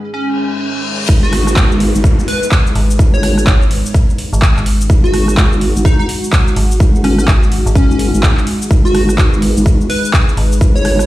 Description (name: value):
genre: bass house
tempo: 126 BPM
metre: 4/4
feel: swing 60% on 16ths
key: G# minor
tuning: A4 = 438 Hz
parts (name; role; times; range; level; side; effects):
- dark analog pad; sustained chords; 0.0-11.1 s; G#3 to B4; -22 LUFS; equal; chorus, sidechain pumping
- plucky unison lead; melody; 0.1-11.1 s; C#4 to C#5; -20 LUFS; equal; analog chorus, cassette tape, digital delay
- reverse cymbal and downlifter; sound effects; 0.3-4.9 s; none; -24 LUFS; left 2 dB; none
- vowel-sweep wobble bass; bass; 1.1-11.1 s; G#1; -14 LUFS; equal; chorus, overdrive, sidechain pumping
- big-room dance drum kit; drums; 1.1-11.1 s; crash cymbal, handclaps, hi-hat, rim click, shaker; -20 LUFS; equal; overdrive
- electronic kick drum; drums; 1.1-10.7 s; none; -11 LUFS; equal; overdrive
- metallic FM bass; bass; 2.8-10.6 s; G#1; -14 LUFS; equal; tube saturation, sidechain pumping
room: little or no reverb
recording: played on a big sound system in a bare room, stone room reverb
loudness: -10 LUFS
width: side -16 dB against mid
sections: 0.0-1.1 A section; 1.1-11.1 B section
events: filter sweep on analog synth pad 0.0-1.1; filter sweep 0.0-1.1; reverse cymbal 0.3-1.1; drop 1.1-11.1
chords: 0.0 G#5; 1.1 G#m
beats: 0.14 0.61 | 1.09 1.56 2.04 2.52 | 2.99 3.47 3.94 4.42 | 4.90 5.37 5.85 6.33 | 6.80 7.28 7.75 8.23 | 8.71 9.18 9.66 10.13 | 10.61